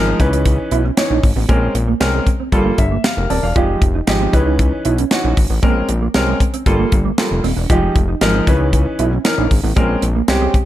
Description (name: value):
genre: early-eighties boogie funk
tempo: 116 BPM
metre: 4/4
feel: straight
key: unclear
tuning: A4 = 438 Hz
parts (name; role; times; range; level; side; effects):
- warm concert grand piano; accompaniment; 0.0-10.5 s; Fb3 to A5; -19 LUFS; equal; none
- fat analog bass; bass; 0.0-10.5 s; Eb1 to Db2; -18 LUFS; equal; none
- mellow electric guitar; riff; 0.1-10.6 s; Ab3 to F4; -23 LUFS; right 9 dB; ensemble chorus
- tight funk drum kit; drums; 0.2-10.7 s; hi-hat, kick drum, snare drum; -17 LUFS; equal; gated reverb
room: light reverb, small room ambience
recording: none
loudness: -13 LUFS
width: side -13 dB against mid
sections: 0.0-10.7 A section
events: grand piano fill 2.5-3.6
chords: 0.2 Dbm9; 1.5 Bbm9; 2.5 Gm9; 3.6 Fm9; 4.3 Dbm9; 5.6 Bbm9; 6.7 Gm9; 7.7 Fm9; 8.5 Dbm9; 9.8 Bbm9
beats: 0.46 0.97 | 1.49 2.01 2.53 3.04 | 3.56 4.08 4.59 5.11 | 5.63 6.15 6.66 7.18 | 7.70 8.21 8.73 9.25 | 9.77 10.28